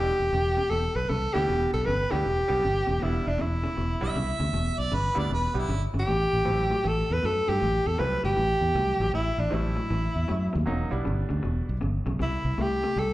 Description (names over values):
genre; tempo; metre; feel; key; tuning
blues; 157 BPM; 4/4; swing 64% on 8ths; E minor; A4 = 440 Hz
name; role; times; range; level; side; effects
breathy tenor saxophone; melody; 0.0-13.1 s; D4 to B4; -26 LUFS; equal; slapback echo
bright upright piano; accompaniment; 0.0-11.7 s; F#3 to G4; -35 LUFS; right 3 dB; slapback echo
electric guitar through a small old amp; riff; 0.0-13.1 s; E2 to A3; -34 LUFS; left 3 dB; spring reverb, slapback echo
fingered electric bass; bass; 0.0-13.1 s; E1 to G2; -28 LUFS; equal; none
clear harmonica; second line; 4.0-5.8 s; E4 to E5; -30 LUFS; right 2 dB; slapback echo
room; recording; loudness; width
small room ambience; live gig heard through the venue's PA, club reverb, nothing above 10.8 kHz; -24 LUFS; side -16 dB against mid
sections
0.0-13.1 A section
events
none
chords
0.0 Em7; 6.1 Am7; 10.7 Em7; 12.2 C